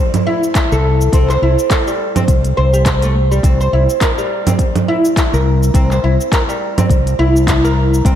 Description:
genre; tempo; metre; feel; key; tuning
organic downtempo; 104 BPM; 4/4; swing 57% on 16ths; C mixolydian; A4 = 442 Hz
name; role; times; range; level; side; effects
organic electronic drum kit; drums; 0.1-8.2 s; cabasa, congas, handclaps, hi-hat; -20 LUFS; right 2 dB; overdrive
oud; arpeggios; 0.3-8.2 s; G3 to C5; -16 LUFS; equal; vintage 12-bit sampler grit, analog delay, shimmer reverb
electronic kick drum; drums; 0.6-8.2 s; none; -15 LUFS; equal; overdrive
fretless electric bass; bass; 0.7-8.2 s; C2; -14 LUFS; left 1 dB; lush chorus
room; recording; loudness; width
moderate plate reverb, RT60 2.8 s; dreamy mix soaked in reverb; -11 LUFS; side -10 dB against mid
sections
0.0-8.2 A section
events
none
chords
0.0 Am7/C; 3.4 C7

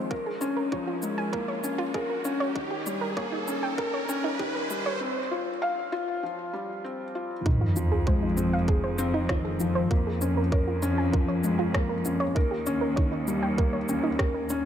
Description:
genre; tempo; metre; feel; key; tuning
piano and strings electronica; 98 BPM; 4/4; straight; F minor; A4 = 441 Hz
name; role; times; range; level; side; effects
soft round pluck; arpeggios; 0.0-14.4 s; Eb4 to Ab5; -33 LUFS; right 3 dB; chorus, sidechain pumping, ping-pong delay
felt-muted upright piano; riff; 0.0-14.7 s; Eb3 to F5; -29 LUFS; left 2 dB; ping-pong delay
riser and sub drop; sound effects; 0.0-9.9 s; none; -33 LUFS; right 1 dB; none
electronic kick drum; drums; 0.1-14.3 s; none; -26 LUFS; right 1 dB; none
electronic shaker and rim click; drums; 0.4-14.6 s; none; -35 LUFS; equal; none
rich studio cello section; bass; 7.5-14.7 s; Eb2 to F2; -29 LUFS; equal; sidechain pumping
room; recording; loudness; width
light reverb, digital ambience; high-pass filter; -25 LUFS; side -10 dB against mid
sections
0.0-7.5 A section; 7.5-14.7 B section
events
build-up 0.0-7.5; riser 0.0-5.0; break 5.0-7.5; drop 7.5-14.7; impact 7.5-9.9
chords
0.1 Db6/F; 2.6 Eb7; 5.0 Csus4; 7.5 Fm7; 9.9 Db6/F; 12.4 Eb7

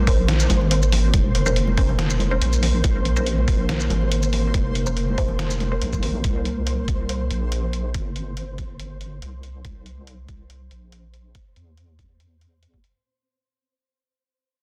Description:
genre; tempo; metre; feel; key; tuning
deep dubstep; 141 BPM; 4/4; half-time; unclear; A4 = 440 Hz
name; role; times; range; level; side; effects
dark analog pad; sustained chords; 0.0-13.1 s; Bb3 to Bb4; -33 LUFS; equal; chorus, vintage 12-bit sampler grit
deep soft wobble bass; bass; 0.0-12.8 s; F1 to E2; -25 LUFS; equal; chorus
flickering grainy texture; texture; 0.0-13.1 s; C5; -36 LUFS; equal; built-in reverb
filtered dub chord stab; stabs; 0.1-5.8 s; Db4 to C5; -33 LUFS; equal; phaser, dub echo
electronic kick drum; drums; 0.1-12.8 s; none; -25 LUFS; equal; studio reverb
trip hop sampler-style drum kit; drums; 0.1-12.9 s; hi-hat, shaker, snare drum; -30 LUFS; equal; studio reverb
congas; percussion; 0.5-6.1 s; none; -33 LUFS; equal; dub echo
room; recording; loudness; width
light reverb, digital ambience; dense, heavily limited modern master; -22 LUFS; mono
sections
0.0-13.1 A section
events
fade-out 0.0-13.1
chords
0.0 Bbmadd9; 6.2 C

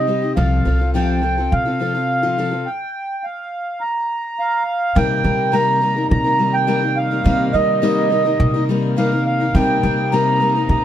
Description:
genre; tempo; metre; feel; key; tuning
folk; 105 BPM; 4/4; straight; C minor; A4 = 441 Hz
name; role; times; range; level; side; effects
mellow accordion; melody; 0.0-10.8 s; Eb5 to Bb5; -19 LUFS; right 2 dB; plate reverb
picked steel-string acoustic guitar; accompaniment; 0.0-10.8 s; C3 to Bb4; -20 LUFS; left 4 dB; none
upright bass; bass; 0.0-10.8 s; C2 to C3; -20 LUFS; equal; none
warm chamber string section; sustained chords; 5.0-10.8 s; C3 to Eb4; -28 LUFS; right 1 dB; none
room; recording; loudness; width
light reverb; none; -16 LUFS; side -10 dB against mid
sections
0.0-5.0 A section; 5.0-10.8 B section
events
stop 2.7-5.0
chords
0.4 F/C; 2.7 N.C.; 5.0 Cm7

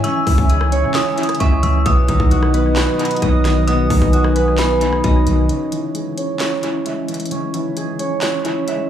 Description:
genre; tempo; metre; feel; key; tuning
hip hop, trap; 132 BPM; 4/4; half-time; C# minor; A4 = 440 Hz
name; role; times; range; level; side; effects
dark detuned synth bell; second line; 0.0-5.5 s; B5 to E6; -23 LUFS; left 2 dB; chorus, dub echo
mellow tine electric piano; accompaniment; 0.0-8.9 s; B2 to C#5; -22 LUFS; equal; medium stereo tremolo, low-pass filter, dub echo
dark analog pad; sustained chords; 0.0-5.5 s; B4 to D#6; -27 LUFS; right 3 dB; chorus
concert harp; arpeggios; 0.0-8.9 s; B3 to E5; -20 LUFS; equal; low-pass filter, dub echo
warm 808-style bass; bass; 0.0-5.5 s; B1 to C#3; -17 LUFS; equal; none
trap drum kit; drums; 0.0-8.8 s; handclaps, hi-hat, kick drum, rim click, snare drum; -22 LUFS; equal; dub echo
room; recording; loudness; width
light reverb; echo-heavy mix, studio reverb; -14 LUFS; side -10 dB against mid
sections
0.0-5.5 A section; 5.5-8.9 B section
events
filter sweep 5.5-8.9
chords
0.0 C#m; 1.9 B; 5.5 C#m

